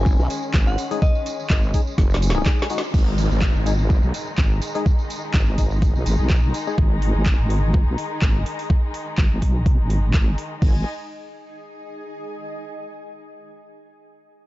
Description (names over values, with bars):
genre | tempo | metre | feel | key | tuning
bass house | 125 BPM | 4/4 | swing 54% on 16ths | unclear | A4 = 439 Hz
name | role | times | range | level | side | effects
glassy synth bell | melody | 0.0-1.5 s | D#5 to G#5 | -32 LUFS | left 4 dB | chorus, dub echo
muted studio string section | sustained chords | 0.0-10.8 s | D#3 to G#5 | -32 LUFS | left 2 dB | sidechain pumping, low-pass filter
wobble bass | bass | 0.0-10.8 s | F#1 to B1 | -21 LUFS | equal | chorus, tube saturation, sidechain pumping
electronic kick drum | drums | 0.1-10.7 s | none | -18 LUFS | equal | overdrive, studio reverb
tambourine | percussion | 0.1-6.8 s | none | -38 LUFS | right 5 dB | none
garage drum kit | drums | 0.3-10.7 s | crash cymbal, handclaps, hi-hat, snare drum | -30 LUFS | equal | overdrive, studio reverb
percussive organ stab | stabs | 0.9-6.8 s | G#3 to G#4 | -30 LUFS | left 5 dB | ensemble chorus, cassette tape, sidechain pumping, dub echo
downlifter | sound effects | 2.9-6.8 s | none | -34 LUFS | left 1 dB | none
granular cloud pad | texture | 4.3-12.5 s | D#4 to G#5 | -37 LUFS | left 1 dB | built-in reverb, sidechain pumping
room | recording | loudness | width
little or no reverb | dark, warm production, nothing above 7.6 kHz | -18 LUFS | side -17 dB against mid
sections
0.0-2.9 A section; 2.9-10.6 B section; 10.6-12.5 C section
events
drop 0.0-2.9; drum fill 2.0-2.9; band accent 2.8; fade-out on ambient pad 2.9-10.6; filter sweep on wobble bass 2.9-10.6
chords
0.0 G#5